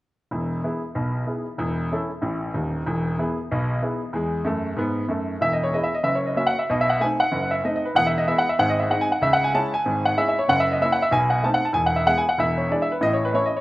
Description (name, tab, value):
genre	jazz, stride piano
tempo	189 BPM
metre	4/4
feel	swing 59% on 8ths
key	E major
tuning	A4 = 440 Hz
part	clear grand piano	solo	0.3-13.6 s	D#1 to A5	-20 LUFS	equal	none
room	moderate plate reverb, RT60 3.4 s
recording	rough home demo mix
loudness	-20 LUFS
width	side -17 dB against mid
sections	0.3-5.4 A section; 5.4-13.6 B section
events	none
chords	0.3 E; 1.6 A/E; 2.9 E; 6.0 F#; 6.7 B7b9; 8.0 E; 8.6 G#; 9.2 C#m; 10.5 F#7; 11.1 B7b9; 11.8 E; 12.4 E7; 13.0 A